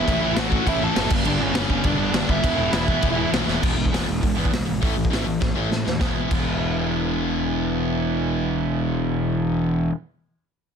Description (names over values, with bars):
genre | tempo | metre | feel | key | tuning
punk rock | 201 BPM | 4/4 | straight | unclear | A4 = 439 Hz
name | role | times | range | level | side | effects
dark smooth lead guitar | melody | 0.0-3.3 s | C#4 to A5 | -26 LUFS | right 3 dB | overdrive
distorted electric guitar | riff | 0.0-9.9 s | G2 to E4 | -26 LUFS | right 14 dB | distortion
high-gain distorted guitar | riff | 0.0-3.6 s | E2 to A3 | -30 LUFS | left 1 dB | distortion
sludgy distorted guitar | riff | 0.0-9.9 s | E2 to A3 | -26 LUFS | left 13 dB | overdrive
fuzz picked electric bass | bass | 0.0-9.9 s | E1 to E2 | -27 LUFS | equal | overdrive
raw garage drum kit | drums | 0.1-6.4 s | crash cymbal, hi-hat, kick drum, snare drum | -24 LUFS | equal | none
room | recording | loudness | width
light reverb | dense, heavily limited modern master | -20 LUFS | side -7 dB against mid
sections
0.0-3.6 A section; 3.6-6.0 B section; 6.0-8.4 C section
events
drum fill 3.5, 5.4-6.0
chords
0.1 A; 1.1 G; 2.4 E; 4.8 A5; 6.0 E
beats
| 0.07 0.37 0.66 0.96 | 1.25 1.55 1.84 2.14 | 2.44 2.73 3.03 3.32 | 3.62 3.92 4.21 4.51 | 4.81 5.11 5.41 5.71 | 6.01 6.31 6.61 6.91 | 7.21 7.52 7.82 8.12